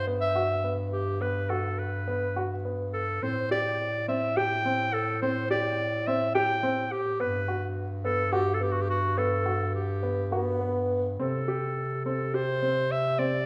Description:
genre	contemporary instrumental, chamber music in an uneven meter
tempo	211 BPM (eighths)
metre	7/8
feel	straight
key	C lydian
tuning	A4 = 440 Hz
part	clear clarinet	melody	0.0-13.5 s	F#4 to G5	-31 LUFS	equal	none
part	mellow bass clarinet	bass	0.0-13.5 s	G2 to C3	-34 LUFS	equal	none
part	warm baby grand piano	arpeggios	0.1-13.4 s	B3 to G4	-34 LUFS	equal	none
part	mellow bassoon	second line	10.3-11.2 s	B3	-33 LUFS	equal	none
room	wet recital hall reverb, RT60 1.6 s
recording	none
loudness	-28 LUFS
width	mono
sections	0.0-11.2 A section; 11.2-13.5 B section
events	none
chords	0.0 Gmaj7; 3.2 Am7; 7.2 Gmaj7; 11.2 C5

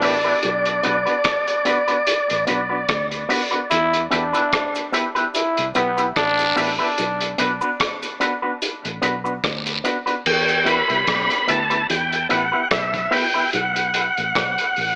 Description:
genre	dub reggae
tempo	73 BPM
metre	4/4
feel	swing 55% on 16ths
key	E minor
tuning	A4 = 440 Hz
part	tonewheel organ	melody	0.0-2.4, 10.3-15.0 s	D5 to B5	-20 LUFS	equal	overdrive, fast rotary speaker, dub echo
part	growling trombone	second line	0.0-6.8 s	B3 to E4	-23 LUFS	equal	dub echo
part	electric guitar with an envelope filter	accompaniment	0.0-13.4 s	B3 to B4	-23 LUFS	equal	dub echo
part	vintage muted fingered electric bass	bass	0.0-15.0 s	A1 to E2	-32 LUFS	equal	none
part	crunchy breakbeat drum kit	drums	0.0-15.0 s	crash cymbal, hi-hat, kick drum, rim click	-22 LUFS	equal	none
part	cabasa and guiro	percussion	3.7-10.1 s	none	-29 LUFS	equal	none
room	moderate plate reverb, RT60 2.3 s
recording	AM radio sound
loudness	-17 LUFS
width	side -39 dB against mid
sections	0.0-10.3 A section; 10.3-15.0 B section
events	break 0.0-3.7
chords	0.4 Bm; 3.7 Em; 7.0 Bm; 10.3 Em; 13.5 B5

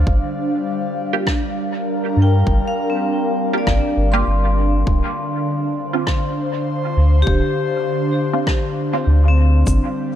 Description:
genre	ambient dub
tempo	100 BPM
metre	4/4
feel	swing 55% on 16ths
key	unclear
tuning	A4 = 440 Hz
part	airy breathy pad	sustained chords	0.0-10.2 s	D3 to F5	-21 LUFS	equal	chorus
part	soft dub sub bass	bass	0.0-9.8 s	D1 to G2	-14 LUFS	equal	none
part	electronic kick drum	drums	0.1-9.8 s	none	-20 LUFS	equal	overdrive
part	filtered dub chord stab	stabs	1.1-9.0 s	Bb3 to G4	-26 LUFS	right 3 dB	phaser, wide subtle chorus, dub echo
part	rim click and shaker	drums	1.3-9.8 s	none	-28 LUFS	left 1 dB	dub echo
part	vibraphone with hard mallets	arpeggios	2.2-10.2 s	C4 to C6	-24 LUFS	left 3 dB	dub echo
room	light reverb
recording	none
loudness	-16 LUFS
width	side -10 dB against mid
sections	0.0-10.2 A section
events	none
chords	0.1 Gm7; 4.9 Dm7

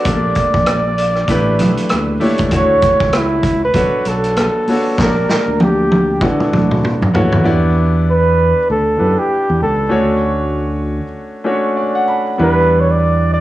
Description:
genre	lush 1970s-style soul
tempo	97 BPM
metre	4/4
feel	swing 58% on 16ths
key	unclear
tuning	A4 = 440 Hz
part	breathy flugelhorn	melody	0.0-13.4 s	D4 to D5	-16 LUFS	right 1 dB	cassette tape
part	clear grand piano	accompaniment	0.0-13.4 s	G3 to B5	-18 LUFS	left 1 dB	cassette tape
part	vintage drum kit	drums	0.0-7.4 s	hi-hat, kick drum, rim click, snare drum, toms	-18 LUFS	equal	cassette tape
part	fingered electric bass	bass	0.1-13.4 s	A1 to D3	-17 LUFS	right 1 dB	transformer saturation
part	congas	percussion	0.1-7.3 s	none	-23 LUFS	right 3 dB	none
part	vibraphone with medium hard mallets	texture	11.9-12.6 s	F#5 to A5	-26 LUFS	right 4 dB	none
room	light reverb, small room reverb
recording	home recording on cassette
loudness	-12 LUFS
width	side -15 dB against mid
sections	0.0-7.5 A section; 7.5-13.4 B section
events	drum fill 5.0-7.5; grand piano fill 11.5-12.4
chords	0.1 Gmadd9/Bb; 1.3 A9sus4; 2.5 Dmaj9; 3.8 Bm9; 5.0 Gmadd9/Bb; 6.2 D69; 7.5 Em7; 9.9 Dmaj7; 12.4 Em7

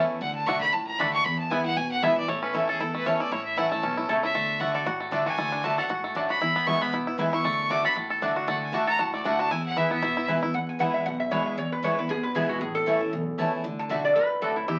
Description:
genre	bluegrass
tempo	232 BPM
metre	4/4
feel	swing 54% on 8ths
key	E mixolydian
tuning	A4 = 440 Hz
part	bluegrass banjo	melody	0.0-10.5, 14.7-14.8 s	A3 to A4	-31 LUFS	equal	none
part	picked steel-string acoustic guitar	accompaniment	0.0-14.8 s	E2 to F#4	-33 LUFS	equal	none
part	mandolin	stabs	0.0-14.5 s	A3 to A5	-30 LUFS	equal	none
part	upright bass	bass	0.0-14.8 s	A1 to E2	-45 LUFS	equal	none
part	clear fiddle	melody	0.2-10.3 s	G#4 to D6	-30 LUFS	equal	none
part	lap resonator guitar	second line	10.5-14.8 s	E4 to A5	-29 LUFS	equal	none
room	moderate studio reverb, RT60 0.5 s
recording	very old 78 rpm record, vinyl crackle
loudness	-26 LUFS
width	mono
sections	0.0-2.3 A section; 2.3-10.5 A section; 10.5-14.8 A section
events	fiddle solo 0.0-10.5; resonator guitar played with a steel bar solo 10.5-14.8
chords	0.2 D; 1.3 E; 2.3 A; 4.4 D; 6.4 E; 7.4 D; 9.5 E; 12.6 A; 13.6 D

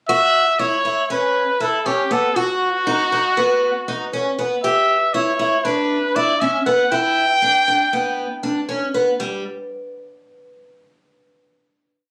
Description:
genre	progressive instrumental, progressive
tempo	237 BPM (eighths)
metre	9/8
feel	straight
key	unclear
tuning	A4 = 439 Hz
part	clear trumpet	melody	0.1-8.7 s	F#4 to G5	-20 LUFS	equal	none
part	picked twelve-string acoustic guitar	arpeggios	0.1-9.4 s	G3 to G4	-23 LUFS	equal	none
room	moderate studio reverb, RT60 0.5 s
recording	recorded on a phone in the room, club reverb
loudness	-19 LUFS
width	mono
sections	0.1-9.2 A section; 9.2-11.5 final note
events	none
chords	0.1 B9sus4; 2.4 B; 4.6 Em; 6.9 G; 9.2 N.C.

